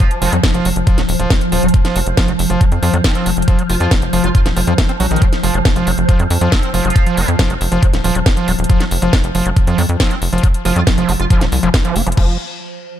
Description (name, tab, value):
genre	psychedelic trance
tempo	138 BPM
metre	4/4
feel	straight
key	unclear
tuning	A4 = 441 Hz
part	metallic wobble bass	second line	0.0-0.3, 3.0-7.3, 10.0-11.4 s	F3 to F4	-27 LUFS	right 4 dB	ensemble chorus, sidechain pumping, high-pass filter, tape echo
part	swarming drone	sustained chords	0.0-12.2 s	F3	-21 LUFS	equal	built-in reverb, phaser, sidechain pumping
part	overdriven acid bass	riff	0.0-12.4 s	Eb3 to C4	-20 LUFS	moving between left 2 dB and right 4 dB	distortion, auto-pan, sidechain pumping, ping-pong delay
part	drum and bass drum kit	drums	0.0-12.3 s	crash cymbal, hi-hat, snare drum	-21 LUFS	equal	none
part	electronic kick drum	drums	0.0-12.3 s	none	-13 LUFS	equal	none
part	tight sequencer bass	bass	0.2-12.4 s	Eb1 to F2	-17 LUFS	equal	none
room	digital ambience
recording	none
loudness	-12 LUFS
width	side -11 dB against mid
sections	0.0-12.2 A section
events	drop 0.0-12.2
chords	0.0 F5; 12.2 N.C.